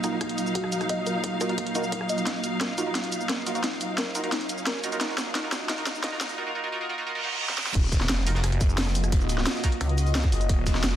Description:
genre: dark technical drum and bass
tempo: 175 BPM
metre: 4/4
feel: straight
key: Eb minor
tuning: A4 = 443 Hz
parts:
  - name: deep dark ambient pad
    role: sustained chords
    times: 0.0-11.0 s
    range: Bb3 to Eb5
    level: -34 LUFS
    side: right 1 dB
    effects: chorus, built-in reverb, sidechain pumping
  - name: band-passed chord stab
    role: stabs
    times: 0.0-9.7 s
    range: Eb4 to Bb4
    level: -33 LUFS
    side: right 3 dB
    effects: chorus, dub echo
  - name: drum and bass drum kit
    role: drums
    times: 0.0-10.9 s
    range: crash cymbal, hi-hat, rim click, shaker, snare drum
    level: -29 LUFS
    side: equal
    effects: studio reverb
  - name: riser, reverse cymbal and impact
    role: sound effects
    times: 1.6-9.1 s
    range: none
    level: -37 LUFS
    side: right 2 dB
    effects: none
  - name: dark studio string section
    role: texture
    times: 0.0-6.4 s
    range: Gb3 to F5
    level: -32 LUFS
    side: equal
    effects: sidechain pumping
  - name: soft round pluck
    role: arpeggios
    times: 0.2-6.1 s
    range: Eb4 to Eb5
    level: -35 LUFS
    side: left 3 dB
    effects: lush chorus, sidechain pumping, dub echo
  - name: electronic kick drum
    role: drums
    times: 0.2-10.7 s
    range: none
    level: -25 LUFS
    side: equal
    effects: high-pass filter on kick, studio reverb
  - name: phased detuned saw bass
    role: bass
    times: 7.8-11.0 s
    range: Eb1 to Gb1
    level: -26 LUFS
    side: equal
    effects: phaser, tube saturation, sidechain pumping
  - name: breakbeat sampler-style drum kit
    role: drums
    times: 7.8-10.9 s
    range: hi-hat, snare drum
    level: -38 LUFS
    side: equal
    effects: high-pass filter on snare, studio reverb, high-pass filter on hats, high-pass filter on room
  - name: pulsing pluck wobble bass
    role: bass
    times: 9.8-10.3 s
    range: Db2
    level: -23 LUFS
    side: equal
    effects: chorus
room: light reverb, digital ambience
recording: dense, heavily limited modern master, high-pass filter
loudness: -24 LUFS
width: side -11 dB against mid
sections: 0.0-7.8 A section; 7.8-11.0 B section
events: build-up 0.0-7.8; filter sweep on ambient pad 0.0-7.8; filter sweep on synth pluck 0.0-7.8; filter sweep on synth stab 0.0-7.8; filter sweep 0.0-7.8; drum fill 2.3-6.4, 7.5; reverse cymbal 7.1-7.8; drop 7.8-11.0; impact 7.8-9.1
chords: 0.0 Ebmadd9

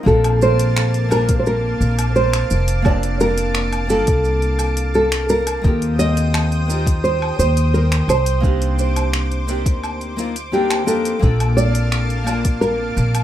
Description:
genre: sunset chillout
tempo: 86 BPM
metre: 4/4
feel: straight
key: Bb major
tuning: A4 = 440 Hz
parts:
  - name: nylon-string guitar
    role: accompaniment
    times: 0.0-13.2 s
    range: Bb3 to A5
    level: -26 LUFS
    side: moving between left 6 dB and right 5 dB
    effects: auto-pan
  - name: lush unison pad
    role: sustained chords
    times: 0.0-13.2 s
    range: Bb3 to Eb6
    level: -28 LUFS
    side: left 1 dB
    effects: chorus, plate reverb
  - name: nylon-string guitar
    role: melody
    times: 0.1-13.2 s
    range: G4 to Eb5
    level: -20 LUFS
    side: right 1 dB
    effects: digital delay, plate reverb
  - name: upright bass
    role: bass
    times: 0.1-13.2 s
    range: F1 to F2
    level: -19 LUFS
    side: equal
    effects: none
  - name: deep house drum kit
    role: drums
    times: 0.1-13.2 s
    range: finger snaps, hi-hat, shaker, woodblock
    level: -26 LUFS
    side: left 1 dB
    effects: overdrive
  - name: electronic kick drum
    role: drums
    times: 0.1-12.6 s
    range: none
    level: -17 LUFS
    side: equal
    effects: none
room: moderate studio reverb, RT60 0.6 s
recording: rough home demo mix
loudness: -15 LUFS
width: side -12 dB against mid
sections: 0.1-13.2 A section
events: none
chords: 0.1 Bbmaj7; 5.6 Eb6; 8.4 Cm9; 11.2 Bbmaj7

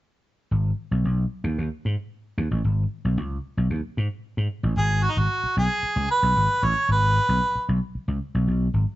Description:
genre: funk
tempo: 113 BPM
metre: 4/4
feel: straight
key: G# minor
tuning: A4 = 440 Hz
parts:
  - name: vintage slap bass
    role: bass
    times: 0.5-8.8 s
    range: G#1 to G#2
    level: -23 LUFS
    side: equal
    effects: none
  - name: warm harmonica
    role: melody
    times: 4.8-7.7 s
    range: D#4 to C#5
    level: -22 LUFS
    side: right 2 dB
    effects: none
room: light reverb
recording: band playing live in one room, nothing above 7.8 kHz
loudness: -21 LUFS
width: side -16 dB against mid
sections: 0.5-4.8 A section; 4.8-9.0 B section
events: none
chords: 0.5 G#m

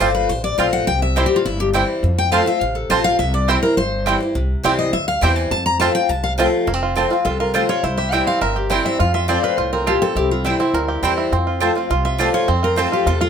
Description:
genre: bluegrass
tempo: 207 BPM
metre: 4/4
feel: straight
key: F major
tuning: A4 = 440 Hz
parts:
  - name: picked steel-string acoustic guitar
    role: melody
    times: 0.0-13.3 s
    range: E4 to Bb5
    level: -21 LUFS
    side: left 3 dB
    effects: none
  - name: picked steel-string acoustic guitar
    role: accompaniment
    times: 0.0-13.3 s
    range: F2 to F4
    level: -21 LUFS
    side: left 2 dB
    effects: none
  - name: bluegrass banjo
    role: arpeggios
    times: 0.0-13.3 s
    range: Bb3 to Bb4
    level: -22 LUFS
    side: right 5 dB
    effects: none
  - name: mandolin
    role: stabs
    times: 0.0-12.9 s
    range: C4 to A5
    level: -22 LUFS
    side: right 5 dB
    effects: none
  - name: upright bass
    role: bass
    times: 0.0-13.3 s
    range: F1 to F2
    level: -22 LUFS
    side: equal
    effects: none
room: moderate small room reverb, RT60 0.5 s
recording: minimal, uncompressed stereo recording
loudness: -16 LUFS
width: side -7 dB against mid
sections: 0.0-6.7 A section; 6.7-13.3 B section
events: steel-string acoustic guitar solo 0.0-6.7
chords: 0.0 F; 0.9 C; 2.0 F; 3.2 C; 5.5 F; 7.8 C; 9.0 F; 10.2 C; 11.3 F

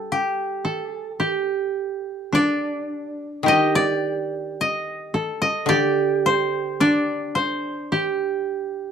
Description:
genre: japanese traditional, Japanese chamber music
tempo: 54 BPM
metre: 4/4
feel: rubato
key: unclear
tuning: A4 = 440 Hz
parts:
  - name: koto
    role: melody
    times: 0.0-8.9 s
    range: G4 to Eb5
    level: -24 LUFS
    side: left 2 dB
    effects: none
  - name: koto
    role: second line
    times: 0.0-8.9 s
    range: D4 to A4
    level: -23 LUFS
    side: right 4 dB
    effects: none
  - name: koto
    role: accompaniment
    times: 0.0-8.9 s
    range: D3 to G3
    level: -24 LUFS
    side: left 4 dB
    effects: none
room: moderate studio reverb, RT60 0.6 s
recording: dark, warm production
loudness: -20 LUFS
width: side -7 dB against mid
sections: 0.0-8.9 A section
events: none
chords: none

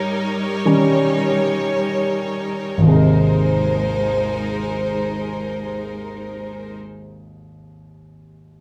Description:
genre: pop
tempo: free time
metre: none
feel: none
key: Ab major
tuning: A4 = 441 Hz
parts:
  - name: warm grand piano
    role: accompaniment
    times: 0.0-8.6 s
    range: Ab1 to Bb4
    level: -21 LUFS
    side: equal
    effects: none
  - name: warm studio string section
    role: sustained chords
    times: 0.0-6.7 s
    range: G3 to Db5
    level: -24 LUFS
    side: equal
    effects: none
room: moderate large studio reverb, RT60 0.8 s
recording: band playing live in one room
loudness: -19 LUFS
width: mono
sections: 0.0-2.9 A section; 2.9-6.5 B section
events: slowing down 0.0-2.9; grand piano solo 0.0-2.9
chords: 0.0 Eb7; 2.9 Abadd9

